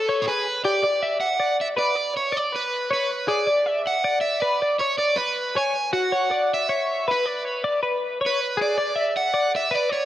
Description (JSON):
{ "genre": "rock", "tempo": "318 BPM (eighths)", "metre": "7/8", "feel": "straight", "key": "unclear", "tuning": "A4 = 440 Hz", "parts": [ { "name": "crunchy overdriven guitar", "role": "melody", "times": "0.0-10.1 s", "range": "A4 to G#5", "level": "-23 LUFS", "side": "right 2 dB", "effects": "spring reverb" }, { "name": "twelve-string electric guitar", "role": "arpeggios", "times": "0.0-10.1 s", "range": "F#4 to E5", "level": "-24 LUFS", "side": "left 2 dB", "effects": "analog chorus" } ], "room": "moderate lush hall reverb, RT60 2.4 s", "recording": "rough home demo mix", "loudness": "-20 LUFS", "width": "side -12 dB against mid", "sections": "0.5-10.1 A section", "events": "none", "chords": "0.5 G; 3.1 E5; 5.8 Bsus4; 8.4 E7(no3)" }